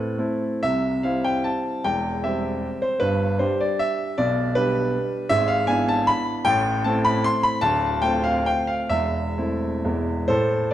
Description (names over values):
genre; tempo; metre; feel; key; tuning
classical, romantic triple-time dance for piano with dotted rhythms; 123-167 BPM; 3/4; rubato; C major, A minor from 5.3 s; A4 = 440 Hz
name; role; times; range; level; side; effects
clear baby grand piano; solo; 0.0-10.7 s; D1 to C6; -20 LUFS; equal; none
room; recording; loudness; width
moderate scoring stage reverb, RT60 1.6 s; dark, warm production; -20 LUFS; side -12 dB against mid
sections
0.6-10.3 A section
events
none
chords
0.0 Am; 0.6 C; 1.9 C/E; 3.0 G; 4.2 G/B; 5.3 E7/G#; 6.5 Am; 7.6 Dm7; 8.9 Am/E; 9.9 E